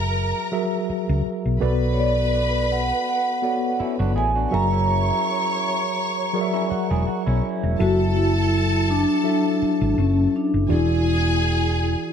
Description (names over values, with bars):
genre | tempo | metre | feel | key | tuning
soul | 83 BPM | 4/4 | swing 54% on 16ths | unclear | A4 = 441 Hz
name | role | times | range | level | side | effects
vibraphone with soft mallets | melody | 0.0-12.1 s | C#4 to A#5 | -24 LUFS | right 1 dB | none
clear studio string section | second line | 0.0-12.1 s | G#4 to C#6 | -28 LUFS | left 1 dB | none
mellow tine electric piano | accompaniment | 0.0-12.1 s | E3 to E5 | -25 LUFS | left 1 dB | medium stereo tremolo
hollow-body short-scale fingered electric bass | bass | 0.0-11.9 s | E1 to C#2 | -22 LUFS | equal | none
electric guitar through a small old amp | riff | 3.8-7.8 s | C#4 to G#4 | -32 LUFS | right 3 dB | none
room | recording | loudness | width
light reverb, studio reverb | dark, warm production | -19 LUFS | side -8 dB against mid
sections
0.0-7.8 A section; 7.8-12.1 B section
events
none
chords
0.0 F#7; 1.6 Bm7; 4.5 F#7; 7.8 F#m7; 10.7 E7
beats
0.52 1.25 | 1.98 2.70 3.43 4.16 | 4.89 5.61 6.34 7.07 | 7.79 8.52 9.24 9.97 | 10.70 11.42